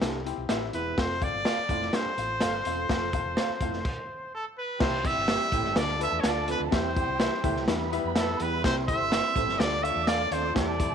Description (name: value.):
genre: uptempo 1960s-style soul.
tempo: 125 BPM.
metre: 4/4.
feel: straight.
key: C major.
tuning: A4 = 440 Hz.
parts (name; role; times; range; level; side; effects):
warm upright piano; accompaniment; 0.0-10.9 s; C3 to G5; -34 LUFS; left 14 dB; none.
breathy baritone saxophone; riff; 0.0-10.7 s; E2 to C3; -37 LUFS; right 13 dB; none.
hollow-body short-scale fingered electric bass; bass; 0.0-10.9 s; E1 to F2; -36 LUFS; equal; none.
crunchy breakbeat drum kit; drums; 0.0-10.9 s; crash cymbal, hi-hat, kick drum, snare drum; -29 LUFS; equal; none.
electric guitar through a small old amp; stabs; 0.5-10.2 s; F4 to F5; -36 LUFS; right 12 dB; none.
bright trumpet; melody; 0.7-10.9 s; A4 to E5; -29 LUFS; equal; none.
dark studio violin section; second line; 4.8-10.9 s; G4 to D6; -36 LUFS; right 13 dB; none.
bright tonewheel organ; sustained chords; 4.8-10.9 s; G3 to F4; -39 LUFS; left 1 dB; none.
room: light reverb, studio reverb.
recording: 1960s-style stereo with parts hard left and right.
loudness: -25 LUFS.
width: side -7 dB against mid.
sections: 0.0-4.8 A section; 4.8-10.9 B section.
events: stop 3.9-4.8.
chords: 0.0 C; 1.0 F; 4.8 C; 5.8 Dm; 6.7 C; 7.7 Em; 8.6 C; 9.6 Dm.